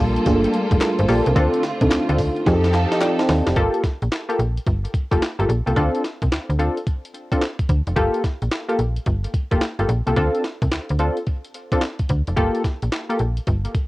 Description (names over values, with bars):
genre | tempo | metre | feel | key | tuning
R&B, new jack swing | 109 BPM | 4/4 | swing 65% on 16ths | G minor | A4 = 440 Hz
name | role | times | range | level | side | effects
mellow FM electric piano | accompaniment | 0.0-3.7 s | A3 to A5 | -20 LUFS | right 1 dB | chorus, cassette tape
warm studio string section | sustained chords | 0.0-3.5 s | D3 to A4 | -25 LUFS | equal | cassette tape
slap-like FM bass | bass | 0.0-13.7 s | F1 to F2 | -20 LUFS | equal | none
breakbeat sampler-style drum kit | drums | 0.2-13.9 s | handclaps, hi-hat, kick drum, snare drum, tambourine | -23 LUFS | equal | cassette tape
group handclap | percussion | 0.8-3.2 s | none | -31 LUFS | left 3 dB | none
funky polysynth comp | stabs | 1.1-13.2 s | Bb3 to A4 | -23 LUFS | left 1 dB | chorus, cassette tape, analog delay
room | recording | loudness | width
light reverb | home recording on cassette | -18 LUFS | side -19 dB against mid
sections
0.0-3.6 A section; 3.6-13.9 B section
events
drum fill 2.5-3.6; FM electric piano fill 2.5-3.6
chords
0.0 Gm9; 1.4 Dm7; 2.5 F9; 3.6 Gm9; 5.8 Dm7; 8.0 Gm9; 10.2 Dm7; 12.4 Gm9